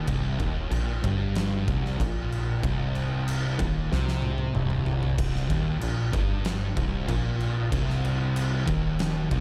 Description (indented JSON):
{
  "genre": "stoner and doom metal",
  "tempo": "94 BPM",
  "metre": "4/4",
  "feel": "straight",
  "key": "C minor",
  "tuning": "A4 = 440 Hz",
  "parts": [
    { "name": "thick fuzz guitar", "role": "riff", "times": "0.0-9.4 s", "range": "C2 to C3", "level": "-33 LUFS", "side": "equal", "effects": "distortion" },
    { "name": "thick fuzz guitar", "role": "riff", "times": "0.0-9.4 s", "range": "C2 to C3", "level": "-32 LUFS", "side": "equal", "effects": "distortion" },
    { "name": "plucky analog bass", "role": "bass", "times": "0.0-9.4 s", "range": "C1 to C2", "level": "-34 LUFS", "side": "equal", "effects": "overdrive" },
    { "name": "oversized low-tuned drum kit", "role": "drums", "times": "0.1-9.4 s", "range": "crash cymbal, kick drum, snare drum, toms", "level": "-33 LUFS", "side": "equal", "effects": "none" }
  ],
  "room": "little or no reverb",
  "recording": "none",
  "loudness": "-27 LUFS",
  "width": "mono",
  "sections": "0.0-5.2 A section; 5.2-9.4 B section",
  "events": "drum fill 3.9-5.2",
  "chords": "0.0 Cm"
}